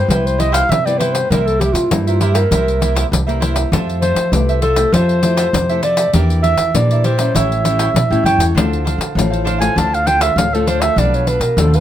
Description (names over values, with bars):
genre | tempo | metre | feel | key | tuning
samba and choro | 99 BPM | 4/4 | straight | C major | A4 = 441 Hz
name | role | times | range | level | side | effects
dark clarinet | melody | 0.0-11.8 s | E4 to A5 | -17 LUFS | right 1 dB | none
cavaquinho | accompaniment | 0.0-11.8 s | D4 to G5 | -24 LUFS | right 6 dB | none
nylon-string guitar | accompaniment | 0.0-11.8 s | G2 to G4 | -23 LUFS | left 6 dB | none
upright bass | bass | 0.1-11.8 s | A1 to F3 | -17 LUFS | right 1 dB | none
pandeiro | percussion | 0.1-11.8 s | none | -19 LUFS | left 2 dB | none
room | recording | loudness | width
light reverb | close, detailed microphones | -13 LUFS | side -11 dB against mid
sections
0.0-11.8 A section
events
clarinet solo 0.0-11.8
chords
0.0 Cmaj7; 1.3 C7; 3.7 Fmaj9; 6.1 Em7b5; 7.4 A7; 8.6 Dm7; 11.0 Bm7b5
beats
0.10 0.70 | 1.31 1.91 2.52 3.12 | 3.73 4.33 4.94 5.54 | 6.15 6.75 7.35 7.96 | 8.56 9.17 9.77 10.37 | 10.98 11.58